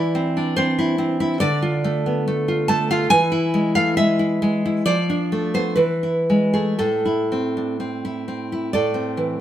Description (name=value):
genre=romantic piece for solo classical guitar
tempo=57-73 BPM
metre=2/4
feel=rubato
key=A minor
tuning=A4 = 441 Hz
part: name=nylon-string guitar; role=solo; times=0.0-9.4 s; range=A2 to A5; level=-18 LUFS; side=equal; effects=none
room=moderate stone room reverb, RT60 1.4 s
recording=band playing live in one room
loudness=-18 LUFS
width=side -11 dB against mid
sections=0.0-8.7 A section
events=none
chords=0.0 C/E; 1.4 Dm; 3.1 E; 4.8 Dm/F; 5.8 E; 6.8 Am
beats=0.57 | 1.41 2.27 | 3.10 3.96 | 4.85 5.77 | 6.79 7.80 | 8.74